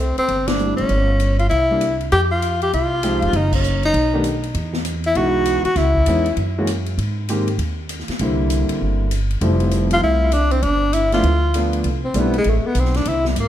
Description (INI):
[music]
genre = jazz, small-group swing and bop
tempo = 197 BPM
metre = 4/4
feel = swing 63% on 8ths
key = C major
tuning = A4 = 437 Hz
[part]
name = breathy tenor saxophone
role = melody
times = 0.0-6.4, 9.9-13.5 s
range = G3 to G4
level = -19 LUFS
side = left 1 dB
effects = tape echo
[part]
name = upright bass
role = bass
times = 0.0-13.5 s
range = F1 to Ab2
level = -20 LUFS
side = equal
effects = none
[part]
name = swinging big-band drum kit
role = drums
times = 0.2-13.5 s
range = crash cymbal, hi-hat, kick drum, ride cymbal, snare drum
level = -29 LUFS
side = left 1 dB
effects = none
[part]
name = clear concert grand piano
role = accompaniment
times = 0.6-12.3 s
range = D3 to G4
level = -23 LUFS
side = equal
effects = wide subtle chorus
[sound]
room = moderate plate reverb, RT60 1.2 s, small room ambience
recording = dreamy mix soaked in reverb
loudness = -16 LUFS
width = side -11 dB against mid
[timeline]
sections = 0.0-2.1 A section; 2.1-11.8 B section; 11.8-13.5 C section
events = band accent 0.4, 3.5; tenor saxophone solo 11.8-13.5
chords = 0.0 C69; 0.9 N.C.; 1.5 C7; 2.1 Fm9; 3.3 F#5; 3.9 B7alt; 4.6 Emaj9; 5.8 Dbm7; 6.4 F#9; 7.0 Abmaj9; 8.2 C9; 9.4 Fmaj7; 10.6 G9; 11.8 C69